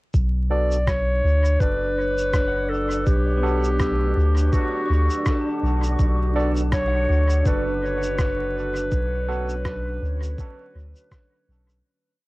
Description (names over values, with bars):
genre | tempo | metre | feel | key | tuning
ambient dub | 82 BPM | 4/4 | swing 57% on 16ths | B minor | A4 = 444 Hz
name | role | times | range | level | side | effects
deep dark ambient pad | sustained chords | 3.0-11.8 s | D4 to F#5 | -35 LUFS | right 1 dB | chorus, built-in reverb, cassette tape
soft dub sub bass | bass | 0.1-11.8 s | F#1 to D2 | -22 LUFS | equal | none
electronic cabasa and rim click | drums | 0.1-11.8 s | none | -34 LUFS | equal | cassette tape, dub echo
electronic kick drum | drums | 0.1-11.3 s | none | -23 LUFS | equal | cassette tape
wind-like tuned noise texture | texture | 0.8-11.9 s | D4 | -31 LUFS | equal | built-in reverb, cassette tape
mellow clarinet | melody | 0.5-11.1 s | F#4 to D5 | -25 LUFS | equal | dub echo
barky tine electric piano | stabs | 0.5-9.5 s | B3 to A4 | -35 LUFS | right 4 dB | overdrive, auto-pan, low-pass filter, cassette tape, dub echo
pedal steel guitar | arpeggios | 2.5-9.3 s | A3 to C#6 | -36 LUFS | left 4 dB | cassette tape, dub echo
room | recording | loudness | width
light reverb | home recording on cassette, vinyl crackle | -19 LUFS | side -21 dB against mid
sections
0.1-11.8 groove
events
fade-in on ambient pad 0.1-11.8; filter sweep on tine electric piano 0.1-11.8; fade-out 7.9-11.8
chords
0.1 Bm7